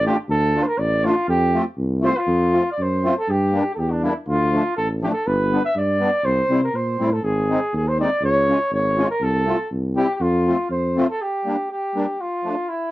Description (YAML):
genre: alpine folk, alpine dance band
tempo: 121 BPM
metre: 2/4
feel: straight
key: F major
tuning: A4 = 442 Hz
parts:
  - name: warm flugelhorn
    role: melody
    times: 0.0-12.9 s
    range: D4 to E5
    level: -21 LUFS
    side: equal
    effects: cassette tape
  - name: mellow tuba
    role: bass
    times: 0.0-11.0 s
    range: G1 to C3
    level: -22 LUFS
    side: equal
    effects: tube saturation
  - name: musette accordion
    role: accompaniment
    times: 0.1-12.6 s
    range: F3 to F4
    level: -22 LUFS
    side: left 1 dB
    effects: cassette tape
room: moderate studio ambience, RT60 0.5 s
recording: home recording on cassette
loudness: -18 LUFS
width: side -17 dB against mid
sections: 0.0-3.3 A section; 3.3-11.2 B section; 11.2-12.9 B section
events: none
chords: 0.0 Dm; 1.3 F; 3.3 Gm; 4.3 Dm; 5.2 G; 6.2 C; 7.2 Ab; 8.2 Db; 9.2 F/C; 9.7 C; 10.2 F; 11.2 Gm; 12.2 Dm